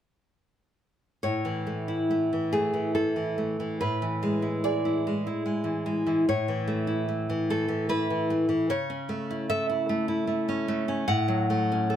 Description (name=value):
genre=romantic piece for solo classical guitar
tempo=69-78 BPM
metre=3/4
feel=rubato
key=A major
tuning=A4 = 437 Hz
part: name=nylon-string guitar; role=solo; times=1.2-12.0 s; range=A2 to F#5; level=-25 LUFS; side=equal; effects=none
room=light reverb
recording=none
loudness=-25 LUFS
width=side -10 dB against mid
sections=1.2-12.0 A section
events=none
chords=1.2 A; 3.8 E7/A; 6.3 A; 8.7 A/C#; 11.1 F#m/A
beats=| 1.23 2.09 2.94 | 3.79 4.63 5.46 | 6.28 7.08 7.90 | 8.70 9.51 10.29 | 11.08 11.90